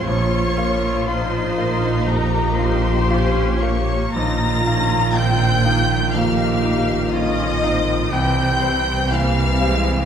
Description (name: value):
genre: cinematic, emotional film score for orchestra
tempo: 60 BPM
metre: 4/4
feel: rubato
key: unclear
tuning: A4 = 436 Hz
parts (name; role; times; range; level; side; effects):
- warm symphonic violin section; melody; 0.0-10.1 s; Bb5 to Bb6; -26 LUFS; left 1 dB; none
- warm symphonic violin section; second line; 0.0-10.1 s; Bb4 to Bb5; -24 LUFS; left 3 dB; none
- bright concert grand piano; accompaniment; 0.0-10.1 s; Bb1 to F5; -26 LUFS; equal; none
- clear symphonic viola section; accompaniment; 0.0-10.1 s; E3 to G4; -26 LUFS; equal; none
- mellow French horn section; sustained chords; 0.1-10.1 s; Eb3 to F4; -26 LUFS; left 2 dB; none
- rich symphonic cello section; bass; 0.1-10.1 s; Bb2 to C3; -23 LUFS; right 4 dB; none
- rich symphonic double bass section; bass; 0.1-10.1 s; Bb1 to C2; -23 LUFS; right 1 dB; none
room: wet scoring stage reverb, RT60 2.1 s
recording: minimal, uncompressed stereo recording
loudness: -16 LUFS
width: side -8 dB against mid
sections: 0.0-10.1 A section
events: none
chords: 0.1 Bbm; 4.1 Ebsus2/Bb; 8.1 C